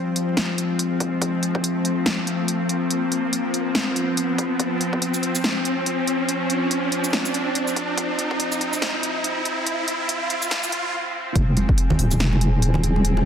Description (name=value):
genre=deep dubstep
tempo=142 BPM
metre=4/4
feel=swing 58% on 16ths, half-time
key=F minor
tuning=A4 = 440 Hz
part: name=bowed-like drone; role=sustained chords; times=0.0-13.3 s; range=F3 to C4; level=-24 LUFS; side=left 1 dB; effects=built-in reverb, vintage 12-bit sampler grit
part: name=riser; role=sound effects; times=0.0-10.9 s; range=none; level=-27 LUFS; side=right 1 dB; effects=none
part: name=deep house drum kit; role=drums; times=0.2-13.1 s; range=hi-hat, shaker, snare drum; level=-25 LUFS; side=equal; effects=none
part: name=electronic kick drum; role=drums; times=1.0-1.6, 4.4-5.0, 7.8-11.8 s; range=none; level=-22 LUFS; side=equal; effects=high-pass filter on kick, high-pass filter on room
part: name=deep soft wobble bass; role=bass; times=11.4-13.3 s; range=Eb1 to F1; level=-19 LUFS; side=equal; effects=chorus
part: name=wind-like tuned noise texture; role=texture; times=11.6-13.3 s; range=Ab3 to Ab4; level=-31 LUFS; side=left 2 dB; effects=built-in reverb
part: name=congas and bongos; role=percussion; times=11.6-13.2 s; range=none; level=-24 LUFS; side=right 2 dB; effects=none
room=moderate lush hall reverb, RT60 1.5 s, digital ambience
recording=dense, heavily limited modern master, vinyl crackle, high-pass filter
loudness=-20 LUFS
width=side -8 dB against mid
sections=0.0-11.4 A section; 11.4-13.3 B section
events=build-up 0.0-11.4; riser 0.0-10.9; filter sweep 0.0-11.4; break 10.9-11.4; drop 11.4-13.3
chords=0.0 F5; 11.4 Fm